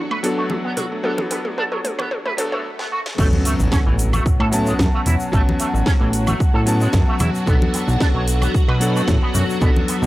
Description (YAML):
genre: nu-disco, nu disco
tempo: 112 BPM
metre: 4/4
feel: straight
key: unclear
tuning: A4 = 441 Hz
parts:
  - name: clear electric grand piano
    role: accompaniment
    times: 0.0-10.1 s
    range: F#3 to A5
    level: -24 LUFS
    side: left 1 dB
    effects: sidechain pumping, tape echo
  - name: string machine, full ensemble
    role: sustained chords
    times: 0.0-10.1 s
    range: F#3 to F#4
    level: -28 LUFS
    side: equal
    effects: phaser, ensemble chorus, sidechain pumping
  - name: wide unison pluck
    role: arpeggios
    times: 0.0-2.6 s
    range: A3 to D4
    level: -32 LUFS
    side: right 3 dB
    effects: sidechain pumping, tape echo
  - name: electric guitar with an envelope filter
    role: riff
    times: 0.1-10.0 s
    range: E3 to B4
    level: -27 LUFS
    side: right 2 dB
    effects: ensemble chorus
  - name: house drum kit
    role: drums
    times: 0.1-10.0 s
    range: crash cymbal, hi-hat, snare drum, toms, woodblock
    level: -26 LUFS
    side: equal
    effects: high-pass filter on toms, high-pass filter on hats, high-pass filter on perc, high-pass filter on snare, high-pass filter on cymbals
  - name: congas and tube shaker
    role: percussion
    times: 0.5-10.1 s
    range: none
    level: -27 LUFS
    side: left 2 dB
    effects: none
  - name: swell and impact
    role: sound effects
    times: 2.5-5.3 s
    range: none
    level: -26 LUFS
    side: equal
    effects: none
  - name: fat analog bass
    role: bass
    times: 3.2-10.1 s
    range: A1 to B2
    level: -19 LUFS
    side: equal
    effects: none
  - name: electronic kick drum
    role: drums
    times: 3.2-9.7 s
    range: none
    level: -18 LUFS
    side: equal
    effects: none
room: little or no reverb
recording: dry, gritty hardware recording, high-pass filter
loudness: -16 LUFS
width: side -17 dB against mid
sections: 0.0-3.2 A section; 3.2-10.1 B section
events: build-up 0.0-3.2; drum fill 0.0-2.6, 2.8-3.2; swell 2.5-3.2; break 2.6-3.2; drop 3.2-10.1; impact 3.2-5.3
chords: 0.0 Bm7; 3.2 A69; 7.5 Bm7